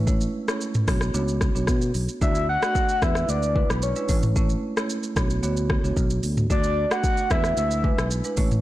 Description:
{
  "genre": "afrobeats",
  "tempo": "112 BPM",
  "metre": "4/4",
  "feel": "straight",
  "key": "unclear",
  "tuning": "A4 = 440 Hz",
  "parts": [
    { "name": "marimba with medium mallets", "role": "accompaniment", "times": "0.0-8.6 s", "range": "G#3 to D5", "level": "-29 LUFS", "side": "right 3 dB", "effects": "none" },
    { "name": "fingered electric bass", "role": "bass", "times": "0.0-8.6 s", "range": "A1 to B2", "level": "-25 LUFS", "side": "equal", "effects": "none" },
    { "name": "afro-pop drum kit", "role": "drums", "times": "0.1-8.6 s", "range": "hi-hat, kick drum, rim click, shaker, toms", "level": "-24 LUFS", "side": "equal", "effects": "soft clipping on snare" },
    { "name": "soft octave-layered synth lead", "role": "melody", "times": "2.2-8.1 s", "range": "B4 to F#5", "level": "-26 LUFS", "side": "left 1 dB", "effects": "chorus" }
  ],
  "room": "little or no reverb",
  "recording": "blown-out, overdriven recording, overdrive",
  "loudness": "-21 LUFS",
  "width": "side -15 dB against mid",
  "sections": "0.0-8.6 A section",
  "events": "none",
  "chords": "0.0 A; 0.9 Bmadd9; 2.2 D; 3.0 E7; 4.1 A; 5.2 Bmadd9; 6.5 D; 7.3 E7",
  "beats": "| 0.07 0.61 1.15 1.68 | 2.22 2.75 3.29 3.82 | 4.36 4.89 5.43 5.97 | 6.50 7.04 7.57 8.11"
}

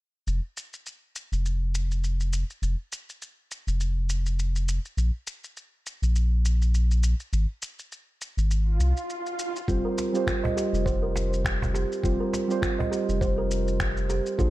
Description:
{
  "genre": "organic downtempo",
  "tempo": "102 BPM",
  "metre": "4/4",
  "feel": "swing 57% on 16ths",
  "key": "unclear",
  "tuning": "A4 = 440 Hz",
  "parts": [
    { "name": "round analog bass", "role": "bass", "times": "0.3-14.5 s", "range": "F1 to C2", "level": "-24 LUFS", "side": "equal", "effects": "none" },
    { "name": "electronic shaker and finger snaps", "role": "drums", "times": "0.3-14.5 s", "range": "none", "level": "-36 LUFS", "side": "left 1 dB", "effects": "none" },
    { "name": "swell", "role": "sound effects", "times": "8.7-9.7 s", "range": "none", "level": "-34 LUFS", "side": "right 2 dB", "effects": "none" },
    { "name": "muted felt-like synth keys", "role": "accompaniment", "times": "9.7-14.5 s", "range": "G3 to C5", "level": "-29 LUFS", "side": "right 4 dB", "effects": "chorus, sidechain pumping, digital delay" },
    { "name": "kalimba", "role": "arpeggios", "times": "9.7-14.5 s", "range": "F4 to Eb5", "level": "-29 LUFS", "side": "right 1 dB", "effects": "low-pass filter, digital delay" },
    { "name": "electronic kick drum", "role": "drums", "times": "9.7-14.5 s", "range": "none", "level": "-29 LUFS", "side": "equal", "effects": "none" },
    { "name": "cajon", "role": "percussion", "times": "10.0-12.9 s", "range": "none", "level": "-32 LUFS", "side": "right 1 dB", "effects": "none" }
  ],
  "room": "little or no reverb",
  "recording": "dark, warm production",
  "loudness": "-24 LUFS",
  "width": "side -17 dB against mid",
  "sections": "0.3-9.7 A section; 9.7-14.5 B section",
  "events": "swell 8.7-9.7; filter sweep on kalimba 9.7-14.5",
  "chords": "0.3 N.C.; 9.7 Fsus2",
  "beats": "| 0.27 0.86 1.45 2.04 | 2.63 3.21 3.80 4.39 | 4.98 5.57 6.16 6.74 | 7.33 7.92 8.51 9.10 | 9.69 10.27 10.86 11.45 | 12.04 12.63 13.21 13.80 | 14.39"
}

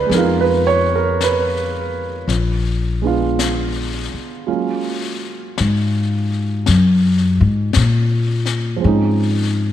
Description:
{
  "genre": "jazz ballad",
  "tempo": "55 BPM",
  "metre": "4/4",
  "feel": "swing 68% on 8ths",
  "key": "unclear",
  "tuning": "A4 = 439 Hz",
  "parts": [
    { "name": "dark grand piano", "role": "accompaniment", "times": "0.0-9.7 s", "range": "F3 to E5", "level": "-19 LUFS", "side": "right 5 dB", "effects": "none" },
    { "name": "upright bass", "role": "bass", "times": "0.0-9.7 s", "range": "Bb1 to Bb2", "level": "-17 LUFS", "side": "left 2 dB", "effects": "none" },
    { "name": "jazz brush drum kit", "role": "drums", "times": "0.1-9.7 s", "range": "brushed snare drum, hi-hat, snare drum", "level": "-26 LUFS", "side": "left 8 dB", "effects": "none" }
  ],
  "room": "moderate echo chamber reverb, RT60 2.4 s",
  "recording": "1960s-style stereo",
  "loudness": "-15 LUFS",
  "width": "side -11 dB against mid",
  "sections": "0.0-4.5 A section; 4.5-9.7 A section",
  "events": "upright bass solo 4.5-9.7",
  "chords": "0.1 Fm7b5; 2.3 Bb7b9; 4.5 Gbmaj9; 8.8 Dbmaj9",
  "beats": "| 0.10 1.19 2.28 3.38 | 4.48 5.57 6.65 7.74 | 8.82"
}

